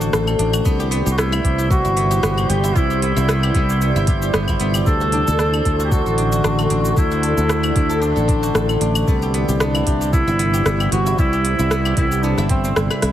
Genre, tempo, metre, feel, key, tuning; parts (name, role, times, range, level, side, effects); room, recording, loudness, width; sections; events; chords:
organic downtempo; 114 BPM; 4/4; swing 55% on 16ths; A4 = 445 Hz
warm duduk; melody; 0.0-13.0 s; C4 to A4; -22 LUFS; equal; tape echo
ethereal airy pad; sustained chords; 0.0-13.1 s; C3 to F#5; -25 LUFS; right 1 dB; ensemble chorus, built-in reverb, sidechain pumping
guzheng; arpeggios; 0.0-13.1 s; B3 to B4; -24 LUFS; left 3 dB; tape echo
sustaining fretless electric bass; bass; 0.0-13.1 s; G1 to D2; -20 LUFS; equal; sidechain pumping
organic electronic drum kit; drums; 0.0-13.1 s; cabasa, claves, hi-hat, rim click; -24 LUFS; equal; overdrive
drifting glass-harmonics texture; texture; 0.0-13.1 s; C5; -32 LUFS; right 2 dB; chorus, built-in reverb
electronic kick drum; drums; 0.7-12.6 s; -18 LUFS; equal; overdrive
light reverb, digital ambience; heavily compressed radio sound; -15 LUFS; side -11 dB against mid
0.0-13.1 A section
kick drops out 12.8-13.1; drum fill 12.9
0.0 Dadd9; 0.7 Cmaj7; 4.9 Dadd9; 9.1 Cmaj7